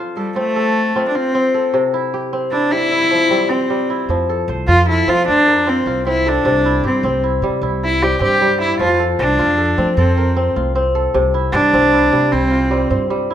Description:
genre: west african traditional, West African string and xylophone music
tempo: 102 BPM (dotted quarters)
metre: 12/8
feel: straight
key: F major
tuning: A4 = 440 Hz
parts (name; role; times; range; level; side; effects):
- kora; arpeggios; 0.0-13.3 s; C3 to C5; -18 LUFS; equal; none
- rich cello; melody; 0.2-12.9 s; G3 to G4; -16 LUFS; equal; none
- upright bass; bass; 4.1-13.3 s; C2 to F3; -20 LUFS; equal; none
room: moderate recital hall reverb, RT60 1.5 s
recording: minimal, uncompressed stereo recording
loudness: -13 LUFS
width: side -10 dB against mid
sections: 0.0-13.3 A section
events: cello solo 0.0-13.3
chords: 0.0 F; 1.7 C; 4.1 F; 6.4 C; 8.8 F; 11.1 C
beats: 0.55 1.14 | 1.73 2.32 2.91 3.50 | 4.09 4.68 5.27 5.85 | 6.44 7.03 7.62 8.21 | 8.79 9.38 9.97 10.56 | 11.14 11.73 12.32 12.91

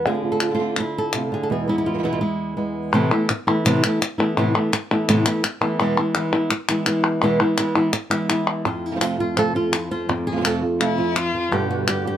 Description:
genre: flamenco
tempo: 168 BPM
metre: 4/4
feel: straight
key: unclear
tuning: A4 = 435 Hz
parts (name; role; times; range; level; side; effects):
- flamenco guitar; melody; 0.0-12.2 s; E2 to A4; -21 LUFS; equal; none
- flamenco guitar; stabs; 0.0-2.9, 8.7-12.2 s; E2 to G4; -25 LUFS; right 5 dB; none
- palmas hand claps; percussion; 0.1-12.1 s; none; -23 LUFS; left 3 dB; none
- rich violin; second line; 10.8-11.4 s; E4 to F4; -25 LUFS; left 4 dB; none
room: light reverb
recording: close, detailed microphones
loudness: -19 LUFS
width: side -10 dB against mid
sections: 0.0-2.9 A section; 2.9-8.7 B section; 8.7-12.2 C section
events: none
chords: 0.1 Dm7; 1.5 E; 2.9 Amadd9; 5.8 E; 8.7 F; 11.5 G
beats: | 0.06 0.42 0.78 1.14 | 1.50 1.86 2.22 2.58 | 2.94 3.29 3.65 4.01 | 4.37 4.72 5.08 5.44 | 5.80 6.15 6.51 6.87 | 7.22 7.58 7.94 8.30 | 8.65 9.01 9.37 9.73 | 10.09 10.44 10.80 11.16 | 11.52 11.88

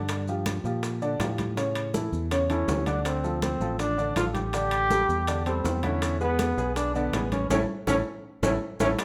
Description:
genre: latin, salsa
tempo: 162 BPM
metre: 4/4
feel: straight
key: unclear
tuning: A4 = 440 Hz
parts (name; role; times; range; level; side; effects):
- clear upright piano; accompaniment; 0.0-8.9 s; C#3 to E5; -32 LUFS; equal; none
- fingered electric bass; bass; 0.0-8.9 s; A1 to Bb2; -33 LUFS; equal; none
- bongos; percussion; 0.1-9.0 s; none; -39 LUFS; equal; none
- congas; percussion; 0.1-9.0 s; none; -37 LUFS; equal; none
- maracas; percussion; 0.1-9.0 s; none; -45 LUFS; equal; none
- timbales; percussion; 0.1-9.0 s; none; -38 LUFS; equal; none
- clear trombone; melody; 2.5-9.0 s; A3 to G4; -30 LUFS; equal; none
room: moderate large studio reverb, RT60 1.1 s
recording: none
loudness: -27 LUFS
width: mono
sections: 0.0-9.0 A section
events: band accent 7.5-9.0; drum fill 7.9-9.0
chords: 0.1 Gm7; 1.6 A; 3.1 Dm7; 4.5 A7sus4; 6.0 E7; 7.5 A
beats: | 0.09 0.46 0.83 1.20 | 1.57 1.94 2.31 2.68 | 3.05 3.42 3.79 4.17 | 4.54 4.91 5.28 5.65 | 6.02 6.39 6.76 7.13 | 7.50 7.88 8.25 8.62 | 8.99

